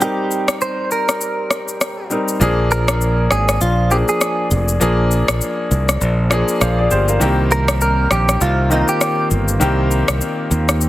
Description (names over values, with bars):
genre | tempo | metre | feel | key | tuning
afrobeats | 100 BPM | 4/4 | swing 58% on 16ths | unclear | A4 = 440 Hz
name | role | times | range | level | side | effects
direct-recorded clean electric guitar | melody | 0.0-9.3 s | Eb4 to C5 | -20 LUFS | right 2 dB | analog chorus, low-pass filter
clear baby grand piano | accompaniment | 0.0-10.9 s | Eb3 to F5 | -19 LUFS | left 1 dB | low-pass filter
electronic shaker and rim click | drums | 0.0-10.9 s | none | -20 LUFS | left 1 dB | none
modern bright fingered electric bass | bass | 2.4-10.9 s | F1 to Eb2 | -17 LUFS | equal | none
room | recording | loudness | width
digital ambience | heavily compressed radio sound | -14 LUFS | side -15 dB against mid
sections
0.0-2.4 A section; 2.4-10.9 B section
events
break 1.2-2.4; kick muted 2.4-10.9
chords
0.0 Cm7; 2.4 Bb7; 7.2 Cm7